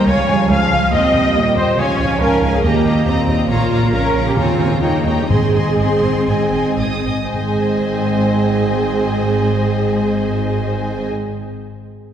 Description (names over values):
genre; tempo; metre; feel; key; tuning
cinematic, heroic adventure film score; 110-142 BPM; 4/4; straight; Ab major; A4 = 440 Hz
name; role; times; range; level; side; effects
warm symphonic violin section; melody; 0.0-11.1 s; G5 to Eb6; -28 LUFS; left 3 dB; none
rich studio violin section; second line; 0.0-11.1 s; C5 to Ab5; -25 LUFS; left 2 dB; none
warm symphonic viola section; accompaniment; 0.0-11.1 s; Eb4 to F5; -20 LUFS; equal; none
bright symphonic cello section; bass; 0.0-11.1 s; Ab2 to Db4; -21 LUFS; right 1 dB; none
bright trombone section; sustained chords; 0.1-11.1 s; G2 to C4; -23 LUFS; right 2 dB; none
rich symphonic double bass section; bass; 0.1-11.1 s; Ab1 to Eb2; -21 LUFS; right 1 dB; none
timpani; percussion; 2.6-11.1 s; Ab2 to Eb3; -22 LUFS; equal; none
room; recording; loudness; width
wet concert hall reverb, RT60 2.3 s; heard from further back in the room; -14 LUFS; side -9 dB against mid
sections
0.0-7.3 A section; 7.3-11.6 B section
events
slowing down 2.6-7.3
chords
0.1 Db; 0.9 Eb; 1.8 Db; 2.6 Eb; 3.5 Bbm; 4.4 Eb7sus4; 4.8 Eb7; 5.3 Ab